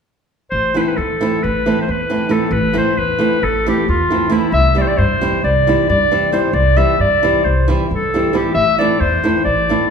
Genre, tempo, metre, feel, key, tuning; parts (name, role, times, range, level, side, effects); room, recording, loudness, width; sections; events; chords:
balkan folk, Balkan wedding band; 269 BPM (eighths); 9/8; straight; A minor; A4 = 441 Hz
bright clarinet; melody; 0.5-9.9 s; E4 to E5; -16 LUFS; left 2 dB
upright bass; bass; 0.5-9.7 s; A1 to G2; -19 LUFS; equal
flamenco guitar; accompaniment; 0.7-9.9 s; E3 to E4; -18 LUFS; right 2 dB
wet recital hall reverb, RT60 1.4 s; recorded in a church or concert hall; -13 LUFS; side -6 dB against mid
0.5-9.9 A section
0.5 Am; 4.5 C; 8.5 Am